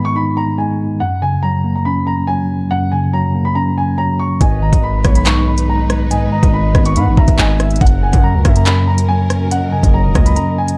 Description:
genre	hip hop, drill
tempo	141 BPM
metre	4/4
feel	half-time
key	unclear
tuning	A4 = 440 Hz
part	dark concert grand piano	melody	0.0-10.8 s	F#5 to C#6	-23 LUFS	equal	none
part	mellow tine electric piano	accompaniment	0.0-10.8 s	F#2 to D#4	-19 LUFS	equal	none
part	gliding portamento lead	second line	4.4-10.8 s	C#5 to F#5	-28 LUFS	equal	chorus, phaser, delay
part	dark symphonic string section	sustained chords	4.4-10.8 s	F#3 to B4	-29 LUFS	equal	none
part	distorted 808-style bass	bass	4.4-10.4 s	E1 to G#2	-18 LUFS	equal	distortion
part	drill drum kit	drums	4.4-10.8 s	handclaps, hi-hat, kick drum, rim click	-16 LUFS	equal	vintage 12-bit sampler grit
room	digital ambience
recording	dark, warm production, lossy compression artefacts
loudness	-14 LUFS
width	mono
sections	0.0-10.8 A section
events	break 10.4-10.8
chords	0.0 G#m; 1.0 F#; 4.4 G#m; 7.8 F#

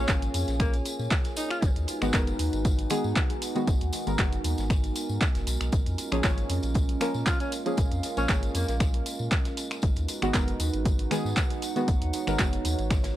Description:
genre	deep house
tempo	117 BPM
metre	4/4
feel	swing 54% on 16ths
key	unclear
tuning	A4 = 439 Hz
part	breathy alto saxophone	melody	0.0-1.7, 7.3-8.8 s	Bb3 to F4	-36 LUFS	left 1 dB	analog delay
part	dark analog pad	sustained chords	0.0-13.2 s	Ab3 to Db5	-37 LUFS	right 1 dB	chorus, sidechain pumping
part	deep mellow chord stab	stabs	0.0-12.6 s	Eb3 to Db5	-32 LUFS	equal	chorus, sidechain pumping, analog delay
part	warm sub bass	bass	0.0-13.1 s	Gb1 to Bb2	-30 LUFS	equal	tube saturation, sidechain pumping
part	warbly tape-like pad	texture	0.0-13.2 s	Cb4 to Ab5	-36 LUFS	right 3 dB	chorus, built-in reverb, sidechain pumping
part	electronic kick drum	drums	0.1-13.0 s	none	-26 LUFS	equal	none
part	punchy analog drum machine	drums	0.1-13.1 s	finger snaps, handclaps, hi-hat	-32 LUFS	right 1 dB	none
part	tight funk drum kit	drums	0.1-13.2 s	hi-hat, snare drum	-44 LUFS	left 2 dB	none
part	tambourine	percussion	0.1-13.1 s	none	-40 LUFS	left 2 dB	none
room	small room ambience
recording	dry, gritty hardware recording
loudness	-24 LUFS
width	side -13 dB against mid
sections	0.0-13.2 A section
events	none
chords	0.0 Bbm7; 1.6 Abm7; 5.7 Bbm7; 9.8 Abm7

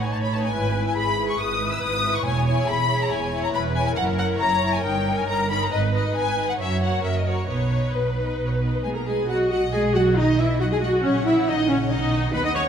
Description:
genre	quick classical-period movement for string orchestra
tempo	138 BPM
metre	4/4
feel	straight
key	B major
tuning	A4 = 440 Hz
part	rich studio violin section	melody	0.0-12.7 s	A#4 to E6	-26 LUFS	left 4 dB	none
part	clear studio violin section	second line	0.0-12.6 s	D#4 to D#6	-30 LUFS	left 3 dB	none
part	rich studio viola section	accompaniment	0.0-12.6 s	C#4 to D#5	-25 LUFS	equal	none
part	rich chamber double bass section	bass	0.0-12.7 s	E1 to D#2	-27 LUFS	right 2 dB	none
part	rich studio cello section	bass	0.0-12.6 s	E2 to D#4	-28 LUFS	right 3 dB	none
room	wet recital hall reverb, RT60 1.8 s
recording	recorded in a church or concert hall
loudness	-20 LUFS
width	side -8 dB against mid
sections	0.0-9.3 A section; 9.3-12.7 B section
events	none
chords	0.0 B7/A; 0.5 E/G#; 2.3 C#m7/E; 4.0 F#7; 4.8 D#7/G; 5.7 G#m; 6.6 F#; 7.5 B; 11.0 F#7/A#; 11.9 B

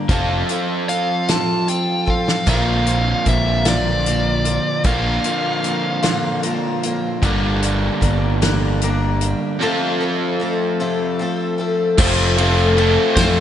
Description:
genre	folk rock and heartland rock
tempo	50 BPM (dotted quarters)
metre	6/8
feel	straight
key	unclear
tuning	A4 = 444 Hz
part	picked twelve-string acoustic guitar	accompaniment	0.0-13.4 s	F2 to A4	-22 LUFS	left 2 dB	slapback echo
part	overdriven semi-hollow guitar	riff	0.0-13.4 s	G2 to Bb4	-21 LUFS	right 1 dB	slapback echo
part	picked electric bass	bass	0.1-13.4 s	F1 to F2	-20 LUFS	equal	none
part	natural country drum kit	drums	0.1-13.4 s	crash cymbal, hi-hat, kick drum, ride cymbal, snare drum, splash cymbal	-21 LUFS	equal	none
part	smooth overdriven lead guitar	melody	0.9-6.4, 13.2-13.3 s	C5 to A5	-22 LUFS	equal	slapback echo
part	tambourine	percussion	12.0-13.4 s	none	-35 LUFS	right 7 dB	none
room	moderate lush hall reverb, RT60 3.2 s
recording	big arena sound, nothing above 10.8 kHz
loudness	-16 LUFS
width	side -10 dB against mid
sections	0.0-12.0 A section; 12.0-13.4 B section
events	drum fill 2.1-2.5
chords	0.1 F; 2.5 Bbadd9; 7.2 Gm; 9.6 F

